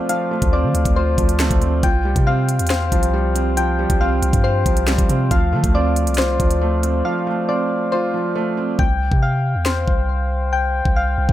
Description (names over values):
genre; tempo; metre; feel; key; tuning
hip hop, drill; 138 BPM; 4/4; half-time; unclear; A4 = 440 Hz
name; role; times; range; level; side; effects
felt-muted upright piano; accompaniment; 0.0-8.8 s; F3 to F5; -22 LUFS; right 5 dB; none
soft electric-piano-like synth keys; arpeggios; 0.0-11.3 s; C5 to G5; -22 LUFS; left 4 dB; chorus, digital delay
drill drum kit; drums; 0.1-11.3 s; handclaps, hi-hat, kick drum, snare drum; -19 LUFS; equal; none
long sustained 808-style bass; bass; 0.4-11.3 s; C2 to D3; -20 LUFS; equal; none
room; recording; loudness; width
little or no reverb; none; -16 LUFS; side -13 dB against mid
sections
0.0-8.8 A section; 8.8-11.3 B section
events
break 7.0-8.8; hi-hats muted 8.8-11.3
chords
0.0 Dm7; 1.8 Csus4; 5.3 Dm7; 8.8 Csus4